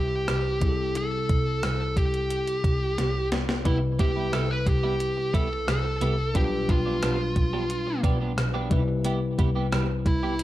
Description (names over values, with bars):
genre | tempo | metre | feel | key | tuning
1980s-style pop | 89 BPM | 4/4 | straight | C major | A4 = 438 Hz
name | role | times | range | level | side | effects
fuzz lead guitar | melody | 0.0-10.4 s | E4 to B4 | -28 LUFS | right 1 dB | distortion, digital delay, plate reverb
bell-like tine electric piano | accompaniment | 0.0-10.4 s | B2 to B4 | -30 LUFS | left 3 dB | plate reverb
dark double bass | bass | 0.0-10.4 s | B1 to C2 | -29 LUFS | equal | none
clean 12-bit digital drum machine | drums | 0.3-10.4 s | hi-hat, kick drum, rim click, snare drum | -26 LUFS | equal | none
twelve-string electric guitar | riff | 3.7-10.4 s | F3 to G4 | -33 LUFS | right 4 dB | wide subtle chorus
room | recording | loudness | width
moderate studio reverb, RT60 0.5 s | dark, warm production | -23 LUFS | side -15 dB against mid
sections
0.0-10.4 A section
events
drum fill 3.0-3.7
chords
0.0 Cmaj7; 0.6 Am7/C; 3.7 Cmaj7; 6.3 G7/B; 8.7 Cmaj7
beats
0.28 | 0.96 1.63 2.31 2.98 | 3.65 4.33 5.00 5.67 | 6.35 7.02 7.70 8.37 | 9.05 9.72 10.39